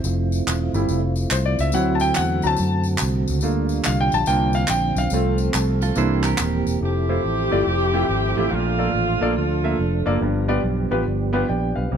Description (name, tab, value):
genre	uptempo gospel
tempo	142 BPM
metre	4/4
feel	swing 65% on 8ths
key	F major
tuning	A4 = 440 Hz
part	percussive tonewheel organ	sustained chords	0.0-12.0 s	D3 to A4	-26 LUFS	right 4 dB	slow rotary speaker, chorus vibrato
part	fingered electric bass	bass	0.0-12.0 s	Eb1 to F#2	-22 LUFS	left 1 dB	none
part	tambourine and handclaps	percussion	0.0-6.7 s	none	-28 LUFS	equal	none
part	clear concert grand piano	accompaniment	0.7-12.0 s	G2 to Bb5	-23 LUFS	equal	none
part	clean electric guitar	second line	5.8-6.8 s	F4 to C5	-29 LUFS	right 8 dB	none
part	dark saxophone section	melody	6.8-10.2 s	A3 to G4	-23 LUFS	left 1 dB	none
part	dark French horn section	sustained chords	6.8-12.0 s	E3 to E4	-34 LUFS	equal	none
room	light reverb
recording	dark, warm production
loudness	-18 LUFS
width	side -8 dB against mid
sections	0.0-6.8 A section; 6.8-12.0 B section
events	grand piano solo 0.0-6.8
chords	0.0 Fmaj7; 1.7 D7; 3.4 Gm7/D; 4.3 C9sus4; 5.1 F/C; 6.0 C7; 6.8 Fmaj7; 8.5 Bbmaj7; 10.2 G7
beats	| 0.04 0.47 0.89 1.31 | 1.74 2.16 2.58 3.01 | 3.43 3.85 4.28 4.70 | 5.12 5.55 5.97 6.39 | 6.82 7.24 7.67 8.09 | 8.52 8.94 9.37 9.79 | 10.22 10.64 11.07 11.49 | 11.92